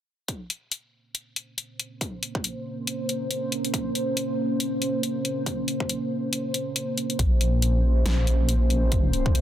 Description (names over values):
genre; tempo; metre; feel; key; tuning
deep dubstep; 139 BPM; 4/4; swing 57% on 16ths, half-time; Bb minor; A4 = 440 Hz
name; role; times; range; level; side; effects
deep dark ambient pad; sustained chords; 2.2-9.4 s; Bb3 to C5; -27 LUFS; right 1 dB; chorus, built-in reverb
dubstep drum kit; drums; 0.3-9.4 s; hi-hat, snare drum; -28 LUFS; left 2 dB; none
electronic kick drum; drums; 0.3-9.3 s; none; -26 LUFS; equal; high-pass filter on kick, high-pass filter on room
deep soft wobble bass; bass; 7.2-9.4 s; Bb1 to C2; -21 LUFS; equal; chorus
room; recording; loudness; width
moderate spring reverb, RT60 2.2 s; dense, heavily limited modern master; -24 LUFS; side -11 dB against mid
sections
0.3-7.2 A section; 7.2-9.4 B section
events
filter sweep on ambient pad 0.3-7.2; kick drops out 6.8-7.2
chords
0.3 Bbmadd9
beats
| 0.29 0.72 1.15 1.58 | 2.01 2.44 2.88 3.31 | 3.74 4.17 4.60 5.03 | 5.46 5.90 6.33 6.76 | 7.19 7.62 8.05 8.49 | 8.92 9.35